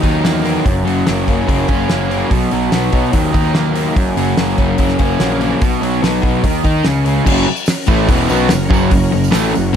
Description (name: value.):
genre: classic rock.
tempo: 145 BPM.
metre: 4/4.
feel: straight.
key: F# mixolydian.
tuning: A4 = 440 Hz.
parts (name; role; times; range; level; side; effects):
crunchy overdriven guitar; riff; 0.0-9.8 s; E2 to D#4; -18 LUFS; left 10 dB; none.
crunchy overdriven guitar; riff; 0.0-9.7 s; E2 to D#4; -18 LUFS; right 11 dB; none.
fuzz picked electric bass; bass; 0.0-9.7 s; E1 to E2; -19 LUFS; equal; overdrive.
damped 70s drum kit; drums; 0.0-9.8 s; crash cymbal, hi-hat, kick drum, snare drum; -17 LUFS; equal; none.
string machine, full ensemble; sustained chords; 7.6-9.7 s; C#4 to A#4; -24 LUFS; right 2 dB; ensemble chorus.
tambourine; percussion; 7.5-9.6 s; none; -32 LUFS; right 16 dB; none.
room: light reverb, small room ambience.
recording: none.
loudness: -12 LUFS.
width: side -8 dB against mid.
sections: 0.0-7.3 A section; 7.3-9.8 B section.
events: none.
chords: 0.0 D#m; 0.7 F#; 2.3 B; 3.1 D#m; 4.0 F#; 5.6 B; 6.5 N.C.; 6.9 C#5; 7.3 F#.